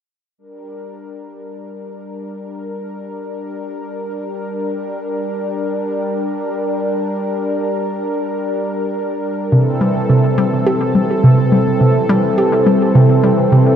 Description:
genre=ambient, sequencer-driven space music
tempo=105 BPM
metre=4/4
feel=straight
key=G dorian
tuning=A4 = 440 Hz
part: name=lush unison pad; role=sustained chords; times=0.4-13.8 s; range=E3 to Bb4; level=-18 LUFS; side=left 1 dB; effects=chorus
part: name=hollow square pluck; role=riff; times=9.5-13.8 s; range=C3 to G4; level=-12 LUFS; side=right 1 dB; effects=chorus, tape echo
room=wet cathedral reverb, RT60 5.7 s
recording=in a vast, echoing space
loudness=-14 LUFS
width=side -9 dB against mid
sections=0.4-13.8 A section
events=fade-in on analog synth pad 0.4-13.8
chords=0.4 Gm; 9.5 C6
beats=| 0.38 0.95 1.52 2.09 | 2.67 3.24 3.81 4.38 | 4.95 5.52 6.09 6.67 | 7.24 7.81 8.38 8.95 | 9.52 10.09 10.67 11.24 | 11.81 12.38 12.95 13.52

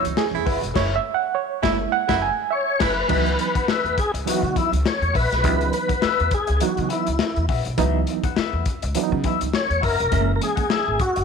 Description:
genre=funk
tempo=102 BPM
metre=4/4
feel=swing 56% on 16ths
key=C# dorian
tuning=A4 = 440 Hz
part: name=electric guitar at the edge of break-up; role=accompaniment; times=0.0-11.2 s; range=F#4 to F#5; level=-29 LUFS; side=left 14 dB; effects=wah
part: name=reed electric piano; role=stabs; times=0.0-10.6 s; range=E3 to G#5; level=-24 LUFS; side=right 12 dB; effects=overdrive, fast tremolo
part: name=upright bass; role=bass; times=0.0-11.2 s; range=E1 to C#3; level=-25 LUFS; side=equal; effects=none
part: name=crunchy breakbeat drum kit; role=drums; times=0.0-11.2 s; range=crash cymbal, hi-hat, kick drum, snare drum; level=-25 LUFS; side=left 4 dB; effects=none
part: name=congas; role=percussion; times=0.0-0.7 s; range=none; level=-35 LUFS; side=right 11 dB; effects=none
part: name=breathy baritone saxophone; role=second line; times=0.3-3.0 s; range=E4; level=-30 LUFS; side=right 12 dB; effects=none
part: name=tonewheel organ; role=melody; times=2.5-11.2 s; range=E4 to C#5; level=-23 LUFS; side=left 2 dB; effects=overdrive, chorus vibrato, slow rotary speaker
room=light reverb, studio ambience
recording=1960s-style stereo with parts hard left and right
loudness=-19 LUFS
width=side -6 dB against mid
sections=0.0-3.1 A section; 3.1-11.2 B section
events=reed electric piano solo 0.0-3.1; band accent 0.8-3.1; silent gap 2.5-3.1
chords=0.0 C#m11; 0.8 F#9; 3.1 C#m11; 10.1 F#9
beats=0.16 | 0.75 1.34 1.92 2.51 | 3.09 3.68 4.26 4.85 | 5.43 6.02 6.60 7.19 | 7.78 8.36 8.95 9.53 | 10.12 10.70

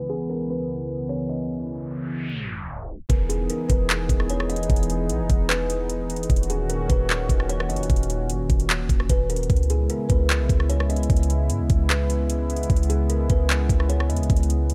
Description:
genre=hip hop, atmospheric cloud-rap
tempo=150 BPM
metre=4/4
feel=half-time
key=C# dorian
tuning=A4 = 443 Hz
part: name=dark analog pad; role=sustained chords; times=0.0-14.7 s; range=C#2 to G#4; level=-31 LUFS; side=equal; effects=chorus, sidechain pumping
part: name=kalimba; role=melody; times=0.1-14.3 s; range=G#4 to D#5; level=-33 LUFS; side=equal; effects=low-pass filter, tape echo
part: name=noise sweep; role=sound effects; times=1.8-3.1 s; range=none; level=-42 LUFS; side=equal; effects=none
part: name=warm 808-style bass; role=bass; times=3.1-14.7 s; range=D#1 to G#2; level=-26 LUFS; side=equal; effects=none
part: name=smooth R&B drum kit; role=drums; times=3.1-14.7 s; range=handclaps, hi-hat, kick drum, rim click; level=-25 LUFS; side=equal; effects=none
room=little or no reverb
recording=low-pass filter, tape stop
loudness=-23 LUFS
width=mono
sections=0.0-3.1 A section; 3.1-14.7 B section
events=filter sweep 0.0-3.1; noise sweep 1.8-3.1; tape stop 2.3-3.1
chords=0.0 C#m7; 3.1 Emaj7; 6.3 D#m7; 9.5 C#m7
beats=0.30 0.70 1.10 | 1.50 1.90 2.30 2.70 | 3.10 3.50 3.90 4.30 | 4.70 5.10 5.50 5.90 | 6.30 6.70 7.10 7.50 | 7.90 8.30 8.70 9.10 | 9.50 9.90 10.30 10.70 | 11.10 11.50 11.90 12.30 | 12.70 13.10 13.50 13.90 | 14.30 14.70

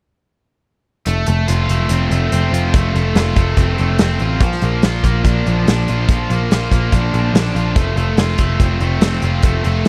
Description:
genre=indie rock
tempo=143 BPM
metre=4/4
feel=straight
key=F major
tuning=A4 = 439 Hz
part: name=cranked stack guitar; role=riff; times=1.1-9.9 s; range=F3 to F4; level=-22 LUFS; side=equal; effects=overdrive
part: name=picked electric bass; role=bass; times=1.1-9.9 s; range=F1 to Bb1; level=-19 LUFS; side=equal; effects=none
part: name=big rock drum kit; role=drums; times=1.1-9.9 s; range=hi-hat, kick drum, snare drum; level=-18 LUFS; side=equal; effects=none
room=little or no reverb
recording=dry, close 1970s-style studio recording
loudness=-16 LUFS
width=mono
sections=1.1-9.9 A section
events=none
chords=1.1 F; 4.4 Bb; 7.8 F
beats=| 1.06 1.48 1.90 2.32 | 2.74 3.16 3.58 4.00 | 4.41 4.83 5.25 5.67 | 6.09 6.51 6.93 7.35 | 7.76 8.18 8.60 9.02 | 9.44 9.86

